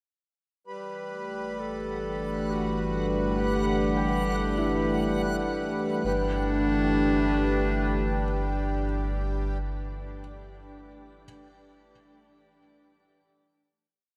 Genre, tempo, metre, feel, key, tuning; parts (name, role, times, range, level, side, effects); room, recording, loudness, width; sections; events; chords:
ambient; 67 BPM; 3/4; straight; G major; A4 = 439 Hz
clear clarinet; melody; 0.7-9.5 s; D4 to B4; -34 LUFS; equal; shimmer reverb, tape echo
warm analog pad; sustained chords; 0.7-9.5 s; E3 to B4; -32 LUFS; equal; chorus, shimmer reverb
deep rumbling drone; bass; 1.7-9.5 s; G1; -34 LUFS; equal; built-in reverb
hand-pumped harmonium; drone; 0.7-9.6 s; G3 to B4; -37 LUFS; equal
backwards swelling texture; texture; 1.9-6.1 s; F#5 to F#6; -42 LUFS; equal; built-in reverb, shimmer reverb
felt-muted upright piano; arpeggios; 4.0-11.3 s; E4 to G5; -38 LUFS; equal; shimmer reverb, tape echo
moderate huge ambient reverb, RT60 7.7 s; -27 LUFS; mono
0.7-6.0 A section; 6.0-8.7 final chord
fade-in on felt piano 0.7-6.0; fade-in on synth texture 0.7-6.0; fade-in on clarinet 0.7-6.0; filter sweep on analog synth pad 0.7-6.0
0.7 Gmaj7